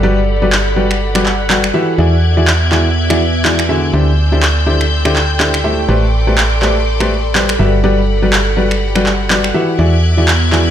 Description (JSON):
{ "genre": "piano house", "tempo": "123 BPM", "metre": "4/4", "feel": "swing 58% on 16ths", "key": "unclear", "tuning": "A4 = 440 Hz", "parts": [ { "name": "rich studio string section", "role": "sustained chords", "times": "0.0-10.7 s", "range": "G4 to G#6", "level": "-22 LUFS", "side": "left 4 dB", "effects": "low-pass filter" }, { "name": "clear upright piano", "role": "riff", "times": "0.0-10.7 s", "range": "D3 to E5", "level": "-16 LUFS", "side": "left 1 dB", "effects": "ping-pong delay" }, { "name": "solid FM bass", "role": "bass", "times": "0.0-10.7 s", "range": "G1 to E2", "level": "-14 LUFS", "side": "right 1 dB", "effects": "none" }, { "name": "warbly tape-like pad", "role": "texture", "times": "0.0-10.7 s", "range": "B3 to G#5", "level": "-22 LUFS", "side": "right 1 dB", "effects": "chorus, built-in reverb" }, { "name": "electronic handclaps and finger snaps", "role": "drums", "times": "0.5-10.6 s", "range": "none", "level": "-17 LUFS", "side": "right 1 dB", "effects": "overdrive" } ], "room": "light reverb", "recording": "none", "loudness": "-10 LUFS", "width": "side -10 dB against mid", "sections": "0.0-10.7 A section", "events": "none", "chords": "0.0 Gmaj7; 2.0 E9; 3.9 D9sus4; 5.9 Am11; 7.6 Gmaj7; 9.8 E9", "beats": "| 0.03 0.52 1.01 1.50 | 1.98 2.47 2.96 3.45 | 3.94 4.42 4.91 5.40 | 5.89 6.37 6.86 7.35 | 7.84 8.32 8.81 9.30 | 9.79 10.28" }